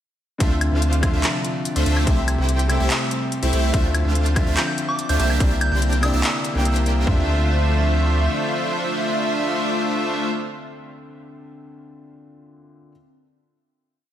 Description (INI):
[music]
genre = future bass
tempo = 144 BPM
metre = 4/4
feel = half-time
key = D minor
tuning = A4 = 440 Hz
[part]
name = clear grand piano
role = accompaniment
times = 0.4-12.9 s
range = C3 to G5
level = -28 LUFS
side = left 2 dB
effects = sidechain pumping, diffuse ambient delay
[part]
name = airy breathy pad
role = sustained chords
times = 0.4-10.3 s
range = C3 to E5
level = -31 LUFS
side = right 1 dB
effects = chorus, vintage 12-bit sampler grit, sidechain pumping
[part]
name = big bright polysynth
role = riff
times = 0.4-10.3 s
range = A3 to G5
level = -24 LUFS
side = equal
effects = lush chorus, sidechain pumping, diffuse ambient delay
[part]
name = saturated sub bass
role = bass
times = 0.4-8.3 s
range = C2 to D2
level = -20 LUFS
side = equal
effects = sidechain pumping
[part]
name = trap drum kit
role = drums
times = 0.4-7.2 s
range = kick drum, toms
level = -20 LUFS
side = equal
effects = none
[part]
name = trap drum kit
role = drums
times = 0.4-6.9 s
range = handclaps, hi-hat, woodblock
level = -26 LUFS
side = left 1 dB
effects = none
[part]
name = soft synth bell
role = melody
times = 4.6-6.3 s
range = D6 to G6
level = -28 LUFS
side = right 1 dB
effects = chorus, sidechain pumping, diffuse ambient delay
[sound]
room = moderate lush hall reverb, RT60 1.6 s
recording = dreamy mix soaked in reverb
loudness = -18 LUFS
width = side -11 dB against mid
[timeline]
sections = 0.4-7.1 drop; 7.1-10.4 final chord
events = drop 0.4-7.1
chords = 0.4 Dm9; 2.1 Am7/C; 3.7 Dm9; 5.2 C9; 7.1 Dm9